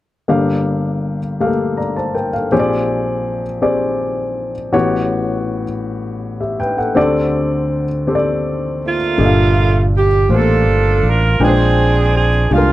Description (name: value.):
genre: slow gospel.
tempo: 54 BPM (dotted quarters).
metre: 6/8.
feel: straight.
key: G minor.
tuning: A4 = 440 Hz.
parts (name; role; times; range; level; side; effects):
warm baby grand piano; accompaniment; 0.3-12.7 s; G1 to Bb5; -16 LUFS; left 2 dB; none.
warm saxophone section; melody; 8.8-12.7 s; A3 to Bb4; -16 LUFS; right 4 dB; none.
fingered electric bass; bass; 9.2-12.7 s; G1 to C2; -14 LUFS; right 1 dB; none.
room: light reverb.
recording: dry, close 1970s-style studio recording.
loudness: -14 LUFS.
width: side -15 dB against mid.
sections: 0.3-9.2 A section; 9.2-12.7 B section.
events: none.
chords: 0.3 Gm9; 2.5 Bb13; 4.7 A13; 7.0 D7sus4; 9.2 Gm9; 11.4 Bb13.